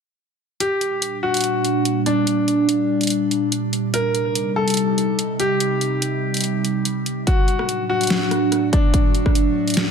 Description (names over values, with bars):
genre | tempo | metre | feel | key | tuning
heavy wobble dubstep | 144 BPM | 4/4 | swing 54% on 16ths, half-time | G harmonic minor | A4 = 441 Hz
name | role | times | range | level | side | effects
bright grand piano | melody | 0.6-9.9 s | D4 to Bb4 | -22 LUFS | left 2 dB | digital delay
evolving wavetable pad | sustained chords | 1.1-9.9 s | A2 to F#4 | -21 LUFS | right 2 dB | chorus, built-in reverb, phaser, sidechain pumping
dubstep drum kit | drums | 0.6-9.9 s | hi-hat, rim click, snare drum | -23 LUFS | equal | overdrive
electronic kick drum | drums | 7.3-9.3 s | none | -17 LUFS | equal | overdrive
room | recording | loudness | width
light reverb, digital ambience | none | -17 LUFS | side -6 dB against mid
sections
0.6-9.9 A section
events
none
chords
0.6 Gm; 3.9 Cm; 7.3 D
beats
| 0.60 1.02 1.44 1.85 | 2.27 2.69 3.10 3.52 | 3.94 4.35 4.77 5.19 | 5.60 6.02 6.44 6.85 | 7.27 7.69 8.10 8.52 | 8.94 9.35 9.77